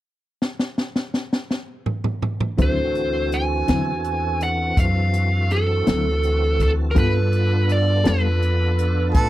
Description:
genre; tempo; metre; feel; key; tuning
slow blues; 55 BPM (dotted quarters); 12/8; straight; D mixolydian; A4 = 440 Hz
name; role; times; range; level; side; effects
swinging big-band drum kit; drums; 0.4-9.3 s; hi-hat, kick drum, snare drum, toms; -21 LUFS; equal; none
smooth overdriven lead guitar; melody; 2.6-9.3 s; A4 to G#5; -24 LUFS; right 1 dB; none
bell-like tine electric piano; accompaniment; 2.6-9.3 s; D4 to C5; -29 LUFS; right 4 dB; none
mellow electric guitar; accompaniment; 2.6-8.3 s; D3 to A4; -24 LUFS; left 4 dB; tremolo
tonewheel organ; sustained chords; 2.6-9.3 s; E3 to A4; -30 LUFS; equal; slow rotary speaker, overdrive, chorus vibrato
upright bass; bass; 2.6-9.3 s; D2 to A2; -21 LUFS; equal; none
clear harmonica; second line; 9.1-9.3 s; A4; -21 LUFS; right 3 dB; overdrive
room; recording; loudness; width
little or no reverb; dry, close 1970s-style studio recording; -18 LUFS; side -15 dB against mid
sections
0.0-2.6 A section; 2.6-9.3 B section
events
drum fill 0.4-2.6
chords
0.0 N.C.; 2.6 D9; 7.0 G9

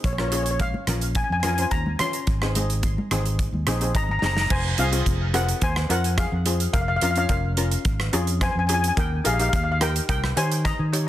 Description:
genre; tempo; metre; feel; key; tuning
calypso; 108 BPM; 4/4; straight; unclear; A4 = 439 Hz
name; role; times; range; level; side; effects
fingered electric bass; bass; 0.0-11.1 s; F1 to Eb3; -25 LUFS; equal; none
modern studio drum kit; drums; 0.0-11.1 s; crash cymbal, hi-hat, kick drum, rim click, snare drum; -26 LUFS; right 1 dB; soft clipping on snare
steel pan; melody; 0.1-11.1 s; Ab4 to C6; -26 LUFS; left 2 dB; digital delay
steel pan; accompaniment; 0.2-11.1 s; C4 to Db5; -30 LUFS; left 2 dB; none
congas; percussion; 0.6-4.4 s; none; -32 LUFS; equal; none
room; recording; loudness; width
light reverb; dense, heavily limited modern master; -20 LUFS; side -13 dB against mid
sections
0.0-4.5 A section; 4.5-11.1 B section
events
drum fill 4.2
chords
0.0 Bbm; 2.3 Ab; 4.5 Fm; 6.7 Bbm/F; 9.0 Eb

